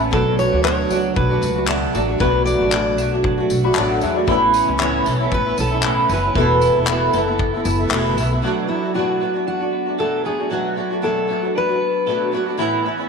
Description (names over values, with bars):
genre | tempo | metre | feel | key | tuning
acoustic pop | 116 BPM | 4/4 | swing 55% on 16ths | unclear | A4 = 440 Hz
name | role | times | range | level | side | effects
flamenco guitar | accompaniment | 0.0-13.1 s | E2 to F#4 | -20 LUFS | right 1 dB | double-tracked left and right
reed electric piano | accompaniment | 0.0-8.4 s | A3 to B5 | -26 LUFS | left 11 dB | fast tremolo
twelve-string electric guitar | arpeggios | 0.0-13.1 s | E3 to A4 | -27 LUFS | right 12 dB | wide subtle chorus
upright bass | bass | 0.0-8.4 s | E1 to E2 | -23 LUFS | equal | none
fingerpicked steel-string acoustic guitar | melody | 0.1-12.3 s | E4 to D5 | -22 LUFS | left 2 dB | none
loose indie drum kit | drums | 0.1-8.3 s | handclaps, kick drum, tambourine | -25 LUFS | left 3 dB | none
room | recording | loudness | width
moderate plate reverb, RT60 2.2 s | 1960s-style stereo with parts hard left and right, lossy compression artefacts | -16 LUFS | side -5 dB against mid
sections
0.0-8.4 A section; 8.4-13.1 B section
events
none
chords
0.1 Bm7; 4.3 Aadd9; 6.4 Esus4; 8.4 Bm7; 12.6 Aadd9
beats
| 0.13 0.65 1.16 1.68 | 2.20 2.72 3.24 3.76 | 4.28 4.80 5.32 5.83 | 6.35 6.87 7.39 7.91 | 8.43 8.95 9.47 9.99 | 10.51 11.03 11.55 12.07 | 12.59